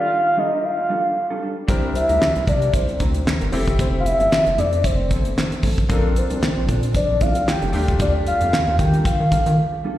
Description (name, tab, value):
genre	early-eighties boogie funk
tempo	114 BPM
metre	4/4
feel	swing 56% on 16ths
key	F major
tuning	A4 = 440 Hz
part	soft octave-layered synth lead	melody	0.0-9.8 s	Bb4 to G5	-21 LUFS	equal	chorus, tremolo, slapback echo
part	bright concert grand piano	accompaniment	0.0-9.8 s	Eb3 to Bb4	-30 LUFS	left 3 dB	slapback echo
part	mellow electric guitar	riff	0.0-10.0 s	F3 to C5	-29 LUFS	right 2 dB	lush chorus, slapback echo
part	rubbery square bass	bass	1.7-9.6 s	F1 to Eb3	-21 LUFS	equal	none
part	damped 70s drum kit	drums	1.7-9.6 s	handclaps, hi-hat, kick drum, snare drum	-22 LUFS	equal	none
room	light reverb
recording	live gig heard through the venue's PA, recital hall reverb, lossy compression artefacts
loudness	-17 LUFS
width	side -13 dB against mid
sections	0.0-10.0 A section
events	break 9.6-10.0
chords	0.0 Ebmaj9#11; 1.7 C9; 3.5 Fmaj7; 5.9 Bbmaj9; 7.7 Ebmaj9#11